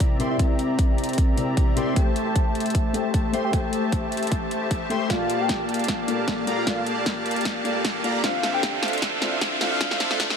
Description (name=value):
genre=future bass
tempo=153 BPM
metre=4/4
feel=swing 54% on 16ths, half-time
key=D minor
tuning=A4 = 441 Hz
part: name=felt-muted upright piano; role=accompaniment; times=0.0-10.4 s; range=Bb2 to G5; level=-29 LUFS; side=left 3 dB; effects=sidechain pumping, ping-pong delay
part: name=big bright polysynth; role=riff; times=0.0-10.4 s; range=A3 to C6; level=-26 LUFS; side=equal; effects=sidechain pumping
part: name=fat analog bass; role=bass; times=0.0-10.4 s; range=none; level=barely audible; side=none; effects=none
part: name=big-room dance drum kit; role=drums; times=0.0-10.4 s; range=hi-hat, snare drum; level=-29 LUFS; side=equal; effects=none
part: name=electronic kick drum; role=drums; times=0.0-10.3 s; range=none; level=-23 LUFS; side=equal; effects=none
part: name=riser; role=sound effects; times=2.5-10.4 s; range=none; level=-33 LUFS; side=equal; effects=none
part: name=soft octave-layered synth lead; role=melody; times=0.3-9.9 s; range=E5 to A5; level=-31 LUFS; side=left 1 dB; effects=chorus, phaser, sidechain pumping, tape echo
room=moderate huge ambient reverb, RT60 4.5 s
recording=dark, warm production, high-pass filter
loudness=-21 LUFS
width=side -7 dB against mid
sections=0.0-10.4 A section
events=build-up 0.0-10.4; filter sweep on analog polysynth 0.0-10.4; filter sweep on soft synth lead 0.0-10.4; filter sweep 0.0-10.4; riser 2.5-10.4; drum fill 5.1-10.4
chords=0.0 C7; 2.0 Am7; 5.1 Gm7/Bb; 8.2 Dm7